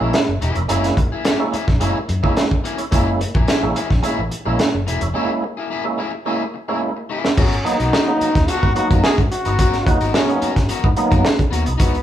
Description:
funk; 108 BPM; 4/4; straight; A4 = 440 Hz
electric guitar at the edge of break-up; accompaniment; 0.0-12.0 s; A#3 to B4; -25 LUFS; left 5 dB
percussive tonewheel organ; stabs; 0.0-11.7 s; F#3 to F#4; -22 LUFS; right 2 dB; overdrive, fast rotary speaker
vintage muted fingered electric bass; bass; 0.0-12.0 s; E1 to G#2; -22 LUFS; equal
crunchy breakbeat drum kit; drums; 0.1-12.0 s; crash cymbal, hi-hat, kick drum, snare drum; -18 LUFS; equal
brilliant trombone; melody; 7.4-12.0 s; B3 to G#4; -22 LUFS; left 1 dB
wet large studio reverb, RT60 0.9 s; band playing live in one room; -16 LUFS; side -11 dB against mid
0.0-7.4 A section; 7.4-12.0 B section
break 5.2-7.4; drum fill 6.8-7.4
0.0 F#9; 7.4 G#m9
0.14 | 0.69 1.25 1.81 2.37 | 2.92 3.48 4.04 4.59 | 5.15 5.71 6.26 6.82 | 7.37 7.93 8.48 9.03 | 9.59 10.14 10.69 11.25 | 11.80

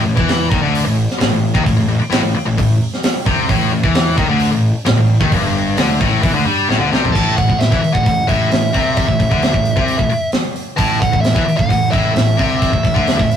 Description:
hard rock; 131 BPM; 4/4; straight; A4 = 438 Hz
high-gain distorted guitar; riff; 0.0-13.4 s; G2 to G3; -18 LUFS; left 4 dB; distortion
scooped high-gain guitar; riff; 0.0-13.4 s; G2 to G3; -21 LUFS; right 3 dB; distortion
fuzz picked electric bass; bass; 0.0-13.4 s; G1 to G2; -20 LUFS; equal; overdrive
tight metal drum kit; drums; 0.2-13.4 s; crash cymbal, hi-hat, kick drum, snare drum, toms; -17 LUFS; right 1 dB
biting lead guitar; melody; 7.1-13.4 s; E5 to A5; -19 LUFS; equal; overdrive
wet booth ambience, RT60 0.2 s; rough rehearsal-room recording, warm saturation; -13 LUFS; side -8 dB against mid
0.0-7.1 A section; 7.1-13.4 B section
drum fill 6.7-7.1
0.0 A5
0.29 0.75 1.20 | 1.66 2.12 2.58 3.03 | 3.49 3.95 4.40 4.86 | 5.32 5.77 6.23 6.68 | 7.14 7.59 8.05 8.51 | 8.96 9.42 9.88 10.33 | 10.79 11.25 11.70 12.16 | 12.62 13.07

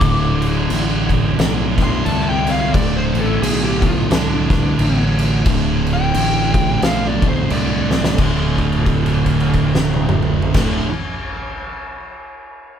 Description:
stoner and doom metal; 88 BPM; 4/4; swing 58% on 8ths; A4 = 440 Hz
fuzz lead guitar; melody; 0.0-8.2 s; D4 to D6; -22 LUFS; left 2 dB; distortion
thick fuzz guitar; riff; 0.0-10.8 s; D2 to D3; -23 LUFS; left 6 dB; distortion
thick fuzz guitar; riff; 0.0-10.8 s; D2 to D3; -20 LUFS; right 7 dB; distortion
fuzz fingered electric bass; bass; 0.0-10.8 s; D1 to C2; -21 LUFS; left 1 dB; overdrive
oversized low-tuned drum kit; drums; 0.0-10.7 s; crash cymbal, kick drum, snare drum, toms; -20 LUFS; equal
little or no reverb; band playing live in one room; -14 LUFS; side -8 dB against mid
0.0-8.2 A section; 8.2-10.9 B section
lead electric guitar solo 0.0-8.2; drum fill 7.8-8.2; held note 8.2-10.5
0.0 D5
| 0.01 0.69 1.37 2.05 | 2.74 3.42 4.10 4.78 | 5.46 6.14 6.83 7.51 | 8.19 8.87 9.55 10.23

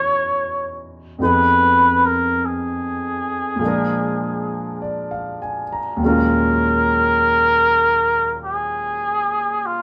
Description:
jazz; 50 BPM; 4/4; swing 68% on 8ths; Eb minor; A4 = 440 Hz
trumpet with cup mute; melody; 0.0-9.8 s; F4 to Db5; -20 LUFS; equal
clear grand piano; accompaniment; 0.0-9.8 s; Eb2 to Bb5; -24 LUFS; equal
moderate studio reverb, RT60 0.6 s; band playing live in one room, nothing above 10.9 kHz; -19 LUFS; mono
0.0-9.8 A section
0.0 Emaj9; 1.2 Fm7b5; 3.6 Bb7; 6.0 Ebm11
| 1.20 2.40 3.61 4.81 | 6.01 7.21 8.42 9.62

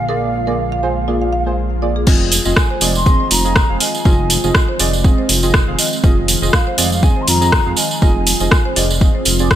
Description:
afro house; 121 BPM; 4/4; swing 55% on 16ths; F dorian; A4 = 442 Hz
mellow hollow silver concert flute; melody; 0.0-8.8 s; F5 to C6; -22 LUFS; equal; digital delay
ethereal airy pad; sustained chords; 0.0-9.6 s; D3 to F4; -25 LUFS; equal; ensemble chorus, built-in reverb, sidechain pumping
smooth synth bass; bass; 0.0-9.6 s; F1 to Bb1; -20 LUFS; equal; sidechain pumping
marimba with soft mallets; arpeggios; 0.1-9.4 s; C4 to Ab5; -23 LUFS; equal; sidechain pumping, digital delay
deep mellow chord stab; stabs; 0.1-9.5 s; Bb3 to F5; -23 LUFS; right 4 dB; chorus, sidechain pumping, digital delay
deep house drum kit; drums; 2.1-9.6 s; crash cymbal, hi-hat, rim click; -18 LUFS; equal; studio reverb
electronic kick drum; drums; 2.1-9.6 s; -13 LUFS; equal; studio reverb
tambourine; percussion; 2.1-9.6 s; -20 LUFS; right 4 dB
digital ambience; -12 LUFS; side -11 dB against mid
0.0-2.1 A section; 2.1-9.6 B section
filter sweep on ambient pad 0.0-2.1; drop 2.1-9.6
0.0 Bb7; 2.1 Fm7
| 0.09 0.58 1.08 1.57 | 2.07 2.57 3.06 3.56 | 4.05 4.55 5.04 5.54 | 6.04 6.53 7.03 7.52 | 8.02 8.52 9.01 9.51

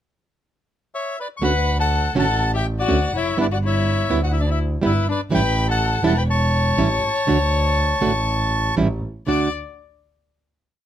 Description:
tango; 123 BPM; 4/4; rubato; D major; A4 = 440 Hz
bandoneon; melody; 0.9-9.5 s; B4 to D6; -23 LUFS; left 1 dB
warm violin; second line; 1.4-9.5 s; D4 to D5; -26 LUFS; left 8 dB
nylon-string guitar; accompaniment; 1.4-9.5 s; D3 to F#4; -20 LUFS; right 4 dB
warm double bass; bass; 1.4-9.5 s; E1 to D2; -22 LUFS; right 1 dB
little or no reverb; close, detailed microphones; -18 LUFS; side -11 dB against mid
0.0-1.4 pickup bar; 1.4-9.3 A section; 9.3-10.9 final chord
0.0 N.C.; 1.4 Dmaj7; 3.4 G6; 5.3 A7; 7.3 D; 8.8 A7; 9.3 D
0.43 0.92 | 1.42 1.91 2.40 2.89 | 3.38 3.86 4.34 4.83 | 5.31 5.80 6.29 6.78 | 7.28 7.78 8.28 8.78 | 9.28

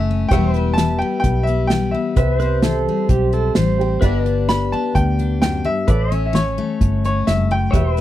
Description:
honky-tonk and classic country; 129 BPM; 4/4; straight; A4 = 435 Hz
bright upright piano; melody; 0.0-8.0 s; C#5 to B5; -23 LUFS; equal
picked steel-string acoustic guitar; accompaniment; 0.0-8.0 s; E2 to G4; -22 LUFS; left 6 dB
warm upright piano; accompaniment; 0.0-8.0 s; G4 to G5; -30 LUFS; right 7 dB
pedal steel guitar; sustained chords; 0.0-8.0 s; B4 to E5; -27 LUFS; left 4 dB; lush chorus
vintage muted fingered electric bass; bass; 0.0-8.0 s; E1 to D2; -20 LUFS; equal
unplugged drum kit; drums; 0.3-8.0 s; hi-hat, kick drum, snare drum; -18 LUFS; right 1 dB
pedal steel guitar; second line; 2.4-4.0 s; G4 to C5; -22 LUFS; right 7 dB
little or no reverb; dry, close 1970s-style studio recording; -15 LUFS; side -13 dB against mid
0.0-8.0 A section
0.3 Em; 2.2 C; 4.0 G; 5.9 A
| 0.31 0.78 1.24 1.71 | 2.17 2.64 3.10 3.56 | 4.03 4.49 4.96 5.42 | 5.89 6.35 6.82 7.28 | 7.74

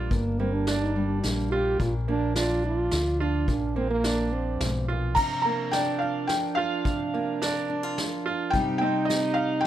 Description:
acoustic folk duo or small band; 107 BPM; 3/4; straight; A4 = 439 Hz
fingerpicked steel-string acoustic guitar; accompaniment; 0.0-9.7 s; G2 to Bb4; -33 LUFS; left 4 dB
bright upright piano; arpeggios; 0.0-9.1 s; Bb3 to F4; -32 LUFS; right 5 dB
fingered electric bass; bass; 0.0-5.1 s; G1 to D2; -28 LUFS; left 1 dB
mellow French horn; second line; 0.1-9.7 s; Bb3 to G4; -29 LUFS; right 3 dB
vintage brush drum kit; drums; 0.1-9.2 s; crash cymbal, hi-hat, kick drum, snare drum; -31 LUFS; equal
felt-muted upright piano; melody; 5.1-9.7 s; Eb5 to Bb5; -26 LUFS; equal
light reverb; close, detailed microphones; -24 LUFS; side -12 dB against mid
0.0-5.2 A section; 5.2-9.7 B section
French horn solo 0.0-5.2
0.0 Gm; 1.8 Bb; 5.2 Bb/C; 8.5 Cm
| 0.11 0.67 1.23 | 1.80 2.36 2.92 | 3.48 4.04 4.61 | 5.17 5.73 6.29 | 6.85 7.41 7.97 | 8.53 9.09 9.65

